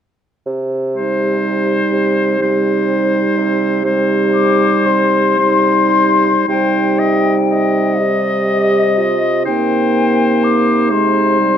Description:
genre	classical, slow romantic movement for wind quintet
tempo	35-42 BPM (dotted quarters)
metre	6/8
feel	rubato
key	C minor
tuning	A4 = 445 Hz
part	dark bassoon	bass	0.5-11.6 s	C3	-18 LUFS	right 1 dB	none
part	bright oboe	second line	1.0-11.6 s	C5 to Eb5	-19 LUFS	left 4 dB	none
part	dark clarinet	accompaniment	1.0-11.6 s	Eb4 to G4	-18 LUFS	right 8 dB	none
part	mellow French horn	accompaniment	1.0-11.6 s	G3 to Bb3	-19 LUFS	equal	none
part	mellow hollow silver concert flute	melody	4.3-11.6 s	Eb5 to D6	-17 LUFS	left 8 dB	none
room	moderate large studio reverb, RT60 1.4 s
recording	dark, warm production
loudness	-12 LUFS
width	side -8 dB against mid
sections	0.5-6.5 A section; 6.5-11.6 B section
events	none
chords	0.5 Cm; 9.5 Fm/C (rootless)

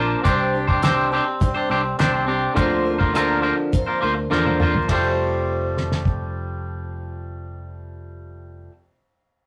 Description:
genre	folk rock and heartland rock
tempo	103 BPM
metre	4/4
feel	straight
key	F major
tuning	A4 = 440 Hz
part	picked steel-string acoustic guitar	accompaniment	0.0-8.8 s	C3 to Bb4	-30 LUFS	equal	none
part	twangy electric guitar	riff	0.0-8.7 s	D3 to C5	-24 LUFS	equal	none
part	fingered electric bass	bass	0.0-8.7 s	F1 to E2	-31 LUFS	equal	none
part	cloth-damped thuddy drum kit	drums	0.2-6.2 s	hi-hat, kick drum, ride cymbal, rim click, snare drum, toms	-24 LUFS	equal	none
room	wet studio reverb, RT60 0.5 s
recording	rough rehearsal-room recording, warm saturation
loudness	-21 LUFS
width	mono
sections	0.0-4.9 A section; 4.9-7.2 B section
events	drum fill 4.3-4.9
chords	0.2 Csus2; 2.6 Bbadd9/D; 4.9 Fadd9

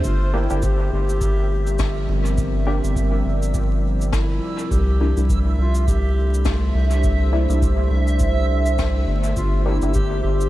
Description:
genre	ambient dub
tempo	103 BPM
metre	4/4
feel	swing 58% on 16ths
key	G dorian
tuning	A4 = 440 Hz
part	deep dark ambient pad	sustained chords	0.0-10.5 s	F3 to E5	-28 LUFS	right 1 dB	chorus, built-in reverb
part	round analog bass	bass	0.0-10.5 s	G1 to C2	-19 LUFS	equal	none
part	cabasa and snare drum	drums	0.0-10.5 s	none	-34 LUFS	left 2 dB	dub echo
part	electronic kick drum	drums	0.0-10.1 s	none	-24 LUFS	equal	none
part	backwards swelling texture	texture	0.0-10.5 s	E5	-32 LUFS	right 3 dB	built-in reverb
part	mellow clarinet	melody	0.1-10.5 s	E4 to G4	-30 LUFS	left 1 dB	dub echo
part	filtered dub chord stab	stabs	0.3-10.0 s	Bb3 to G4	-31 LUFS	left 2 dB	wide subtle chorus, cassette tape, dub echo
room	light reverb, studio ambience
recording	vinyl crackle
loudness	-17 LUFS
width	side -15 dB against mid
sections	0.0-10.5 A section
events	none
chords	0.1 Gm; 4.7 C7; 9.4 Gm

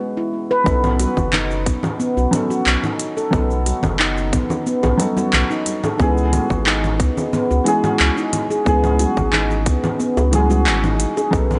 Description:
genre	organic downtempo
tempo	90 BPM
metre	4/4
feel	straight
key	B mixolydian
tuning	A4 = 443 Hz
part	felt-muted upright piano	accompaniment	0.0-11.6 s	E3 to A4	-25 LUFS	equal	sidechain pumping, tape echo
part	handpan	arpeggios	0.2-11.5 s	B3 to B4	-24 LUFS	equal	tape echo
part	warm sub bass	bass	0.7-11.6 s	F#1 to C#2	-22 LUFS	equal	sidechain pumping
part	electronic kick drum	drums	0.7-11.5 s	none	-24 LUFS	equal	overdrive
part	organic electronic drum kit	drums	0.7-11.6 s	congas, handclaps, hi-hat, shaker	-24 LUFS	equal	overdrive
part	congas and bongos	percussion	1.0-11.3 s	none	-29 LUFS	equal	none
room	light reverb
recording	nothing above 10.5 kHz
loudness	-18 LUFS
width	mono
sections	0.7-11.6 A section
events	break 0.0-0.7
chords	0.0 C#m; 0.7 B7; 6.0 C#m

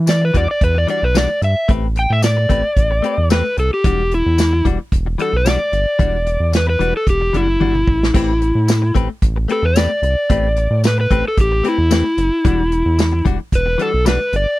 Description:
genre	straight-eighth soul blues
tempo	112 BPM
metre	4/4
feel	swing 53% on 16ths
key	E minor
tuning	A4 = 440 Hz
part	round analog bass	bass	0.0-14.5 s	E1 to E3	-17 LUFS	equal	none
part	overdriven slide guitar	melody	0.1-14.6 s	E4 to G5	-18 LUFS	equal	slapback echo
part	direct-recorded clean electric guitar	stabs	0.1-14.4 s	E3 to B4	-22 LUFS	left 7 dB	wide subtle chorus
part	warm soul drum kit	drums	0.1-14.5 s	hi-hat, kick drum, snare drum, splash cymbal, tambourine, toms	-18 LUFS	right 1 dB	none
room	little or no reverb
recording	none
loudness	-14 LUFS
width	side -17 dB against mid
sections	0.0-14.6 A section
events	electric slide guitar solo 0.0-14.6; drum fill 7.6-8.1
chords	0.0 Em9; 1.7 Am9; 3.8 Em9; 8.1 Am9; 12.4 Em9

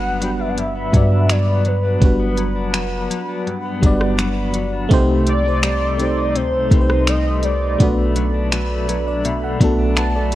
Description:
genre	contemporary R&B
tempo	83 BPM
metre	4/4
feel	straight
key	G major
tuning	A4 = 437 Hz
part	warm velvety synth lead	melody	0.0-10.3 s	B4 to A5	-23 LUFS	equal	chorus, ping-pong delay
part	FM electric piano with auto-pan	accompaniment	0.0-10.4 s	G3 to A5	-22 LUFS	right 1 dB	none
part	hollow soft pad	sustained chords	0.0-10.4 s	Eb4 to C6	-29 LUFS	equal	chorus, sidechain pumping
part	direct-recorded clean electric guitar	arpeggios	0.0-10.4 s	G2 to Eb4	-25 LUFS	left 4 dB	tremolo
part	clean 808-style bass	bass	0.0-10.4 s	F#1 to G2	-20 LUFS	equal	none
part	smooth R&B drum kit	drums	0.2-10.4 s	finger snaps, hi-hat, kick drum, rim click	-19 LUFS	equal	none
room	light reverb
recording	worn, warbling old tape, cassette tape, warbly pitch drift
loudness	-15 LUFS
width	side -14 dB against mid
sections	0.0-10.4 A section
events	FM electric piano fill 8.5-10.4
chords	0.0 Gmaj7; 4.9 Cm6; 7.8 Bm7

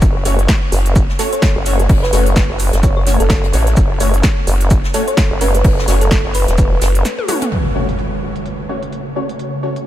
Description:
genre	bass house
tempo	128 BPM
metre	4/4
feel	swing 58% on 16ths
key	F# minor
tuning	A4 = 440 Hz
part	vowel-sweep wobble bass	bass	0.0-7.0 s	E1 to A1	-15 LUFS	equal	chorus, tube saturation, sidechain pumping
part	big-room dance drum kit	drums	0.0-9.8 s	hi-hat, snare drum, toms	-23 LUFS	equal	overdrive, low-pass filter on hats, low-pass filter on snare, low-pass filter on toms, low-pass filter on room
part	electronic kick drum	drums	0.0-6.7 s	none	-14 LUFS	equal	overdrive
part	jazz brush drum kit	drums	0.0-7.5 s	hi-hat, shaker, snare drum	-29 LUFS	left 1 dB	sidechain pumping on hats, high-pass filter on hats, high-pass filter on snare, sidechain pumping on perc, high-pass filter on perc, high-pass filter on room
part	orchestra-hit-like synth stab	stabs	0.3-9.7 s	A3 to C#5	-23 LUFS	left 2 dB	built-in reverb, phaser, sidechain pumping, analog delay
part	thumb-piano-like synth pluck	melody	1.2-6.7 s	A4 to C#5	-23 LUFS	right 1 dB	chorus, analog delay
part	sweeping resonant pad	sustained chords	7.5-9.9 s	C#3 to C#5	-28 LUFS	equal	chorus, sidechain pumping
part	impact	sound effects	7.5-9.4 s	none	-22 LUFS	equal	none
room	light reverb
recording	none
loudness	-12 LUFS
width	side -13 dB against mid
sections	0.0-7.5 A section; 7.5-9.9 B section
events	break 7.0-7.5; drum fill 7.0-7.5; impact 7.5-9.4; filter sweep on drum 7.5-9.9; filter sweep on synth stab 7.5-9.9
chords	0.0 F#m

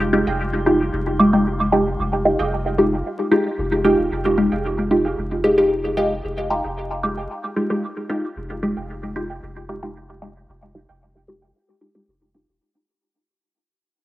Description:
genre	dub techno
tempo	113 BPM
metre	4/4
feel	straight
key	F minor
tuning	A4 = 443 Hz
part	soft dub sub bass	bass	0.0-12.6 s	Eb1 to F1	-29 LUFS	equal	none
part	drifting glass-harmonics texture	texture	0.0-4.1 s	G3 to F4	-35 LUFS	left 1 dB	chorus, built-in reverb, cassette tape
part	filtered dub chord stab	stabs	0.1-12.5 s	Ab3 to G4	-19 LUFS	equal	phaser, cassette tape, dub echo
part	filtered dub chord stab	riff	0.3-11.6 s	Ab4 to G5	-32 LUFS	right 4 dB	analog chorus, vintage 12-bit sampler grit, cassette tape, dub echo
room	moderate spring reverb, RT60 1.6 s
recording	home recording on cassette, vinyl crackle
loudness	-18 LUFS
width	side -15 dB against mid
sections	0.0-4.1 A section; 4.1-12.6 B section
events	fade-out 4.1-12.6; filter sweep on synth stab 4.1-12.6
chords	0.0 Fm9

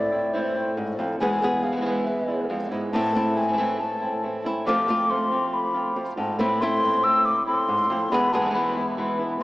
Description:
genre	flamenco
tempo	139 BPM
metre	4/4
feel	straight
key	unclear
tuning	A4 = 441 Hz
part	flamenco guitar	melody	0.0-9.4 s	E2 to G#4	-26 LUFS	equal	none
part	baroque flute	second line	0.0-9.4 s	C5 to E6	-24 LUFS	left 1 dB	none
part	flamenco guitar	stabs	0.1-9.4 s	E2 to F4	-30 LUFS	right 2 dB	none
room	wet cathedral reverb, RT60 4.7 s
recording	recorded in a church or concert hall, small speaker sound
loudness	-21 LUFS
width	side -18 dB against mid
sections	0.0-9.4 A section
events	flute solo 0.0-9.4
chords	0.0 Am; 1.2 E; 2.9 Am; 4.7 F; 6.4 Am; 8.1 E

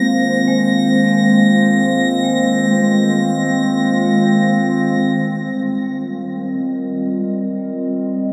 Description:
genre	ambient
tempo	free time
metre	none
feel	none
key	Eb major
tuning	A4 = 440 Hz
part	warbly tape-like pad	sustained chords	0.0-8.3 s	Eb3 to F5	-18 LUFS	equal	chorus, built-in reverb
part	vibraphone with soft mallets	arpeggios	0.0-5.2 s	Ab3 to C5	-22 LUFS	equal	none
part	drifting glass-harmonics texture	texture	0.0-5.0 s	Bb6	-25 LUFS	equal	chorus, built-in reverb
room	wet huge ambient reverb, RT60 7.3 s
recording	none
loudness	-16 LUFS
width	mono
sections	0.0-5.0 A section; 5.0-8.3 B section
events	filter sweep on ambient pad 5.0-8.3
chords	0.0 Fm/Eb; 5.0 Eb69

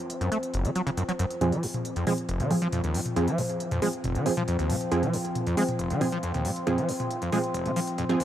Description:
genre	driving peak-time techno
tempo	137 BPM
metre	4/4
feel	straight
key	F phrygian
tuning	A4 = 437 Hz
part	analog drone	drone	0.0-8.2 s	F3 to C4	-32 LUFS	left 1 dB	chorus
part	techno drum kit	drums	0.1-8.2 s	hi-hat, toms	-34 LUFS	left 1 dB	overdrive, small room ambience
part	overdriven acid bass	riff	0.2-8.2 s	F1 to A3	-29 LUFS	equal	distortion, analog chorus, analog delay
part	supersaw stab	stabs	1.4-8.2 s	F3 to Ab4	-29 LUFS	right 2 dB	cassette tape, low-pass filter, analog delay
room	light reverb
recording	dry, gritty hardware recording, high-pass filter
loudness	-25 LUFS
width	side -11 dB against mid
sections	0.0-1.4 A section; 1.4-8.2 B section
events	build-up 1.4-8.2; filter sweep on supersaw synth 1.4-8.2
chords	0.0 N.C.; 1.4 Fm

